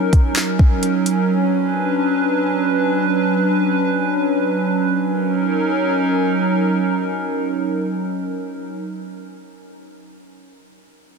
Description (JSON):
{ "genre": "hip hop, atmospheric cloud-rap", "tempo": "free time", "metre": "none", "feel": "none", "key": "F# major", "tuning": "A4 = 441 Hz", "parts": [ { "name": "hollow soft pad", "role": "sustained chords", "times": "0.0-8.8 s", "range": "F#3 to B4", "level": "-18 LUFS", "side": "right 1 dB", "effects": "chorus, sidechain pumping" }, { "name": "smooth R&B drum kit", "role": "drums", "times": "0.1-1.2 s", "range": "handclaps, hi-hat, kick drum", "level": "-14 LUFS", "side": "equal", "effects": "overdrive" } ], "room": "light reverb, digital ambience", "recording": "dense, heavily limited modern master", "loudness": "-16 LUFS", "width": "side -5 dB against mid", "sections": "0.0-5.0 A section; 5.0-8.7 B section", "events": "none", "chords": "0.0 F#6; 1.3 Bmadd9; 5.0 F#6" }